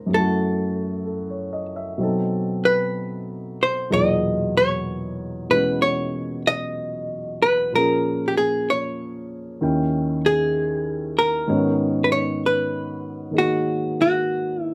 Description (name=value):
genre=jazz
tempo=64 BPM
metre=4/4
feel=swing 66% on 8ths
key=G# minor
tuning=A4 = 440 Hz
part: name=archtop guitar, miked and amplified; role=melody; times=0.0-14.7 s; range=F#4 to D#5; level=-23 LUFS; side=equal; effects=none
part: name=warm grand piano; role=accompaniment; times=0.0-14.7 s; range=C#2 to G5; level=-26 LUFS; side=equal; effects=none
room=moderate studio ambience, RT60 0.5 s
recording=none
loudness=-22 LUFS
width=mono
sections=0.0-14.7 A section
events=none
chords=0.1 F#m7; 2.0 B7b9; 3.9 Emaj9#11; 7.7 A#m7; 9.6 D#7b9; 11.5 G#m11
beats=| 0.12 1.06 2.00 2.95 | 3.91 4.86 5.82 6.77 | 7.72 8.66 9.60 10.54 | 11.47 12.40 13.34 14.27